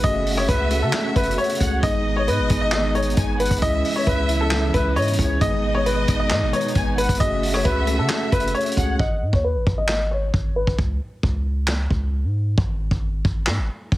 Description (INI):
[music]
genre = hip hop, trap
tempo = 134 BPM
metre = 4/4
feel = half-time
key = G# phrygian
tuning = A4 = 440 Hz
[part]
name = clear baby grand piano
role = melody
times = 0.0-10.7 s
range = A4 to D#5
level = -24 LUFS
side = left 1 dB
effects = low-pass filter, slapback echo
[part]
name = warm studio violin section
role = second line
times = 0.0-9.0 s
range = C#5 to G#5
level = -28 LUFS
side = right 1 dB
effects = slapback echo
[part]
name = mellow tine electric piano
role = accompaniment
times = 0.0-9.0 s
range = E3 to B4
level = -26 LUFS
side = equal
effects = medium stereo tremolo, plate reverb
[part]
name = dark symphonic string section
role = sustained chords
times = 0.0-9.0 s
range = B2 to F#4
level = -32 LUFS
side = equal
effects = plate reverb
[part]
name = warm 808-style bass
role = bass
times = 0.0-14.0 s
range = F#1 to C#3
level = -23 LUFS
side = equal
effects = none
[part]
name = vintage drum kit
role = drums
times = 0.0-14.0 s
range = handclaps, hi-hat, kick drum, rim click, snare drum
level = -24 LUFS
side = equal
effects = none
[sound]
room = light reverb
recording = heavily compressed radio sound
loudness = -18 LUFS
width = side -16 dB against mid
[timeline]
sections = 0.0-9.0 A section; 9.0-14.0 B section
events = hi-hats muted 9.0-14.0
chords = 0.0 F#madd9; 1.8 G#m; 3.6 C#m; 5.4 G#m; 7.2 F#madd9; 9.0 G#5; 10.8 C#5; 12.6 N.C.